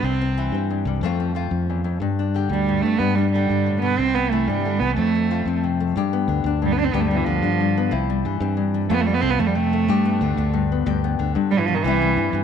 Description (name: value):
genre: highlife guitar band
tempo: 122 BPM (dotted quarters)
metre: 12/8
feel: straight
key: G mixolydian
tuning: A4 = 441 Hz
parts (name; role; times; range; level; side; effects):
- rich cello; melody; 0.0-12.3 s; Eb3 to D4; -22 LUFS; right 7 dB; none
- nylon-string guitar; accompaniment; 0.0-12.4 s; E2 to G4; -24 LUFS; left 10 dB; none
- fingered electric bass; bass; 0.0-12.4 s; C2 to G2; -23 LUFS; equal; none
room: moderate echo chamber reverb, RT60 2.4 s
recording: 1960s-style stereo with parts hard left and right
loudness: -18 LUFS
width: side -8 dB against mid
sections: 0.0-6.0 A section; 6.0-12.4 B section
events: cello solo 6.0-12.4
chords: 0.0 C; 1.0 F; 2.0 G; 4.0 C; 5.0 F; 6.0 G; 7.9 C; 8.9 F; 9.9 G; 11.8 C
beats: | 0.03 0.53 1.02 1.51 | 2.01 2.50 3.00 3.49 | 3.99 4.48 4.97 5.47 | 5.96 6.45 6.94 7.43 | 7.92 8.42 8.91 9.40 | 9.89 10.38 10.87 11.36 | 11.85 12.34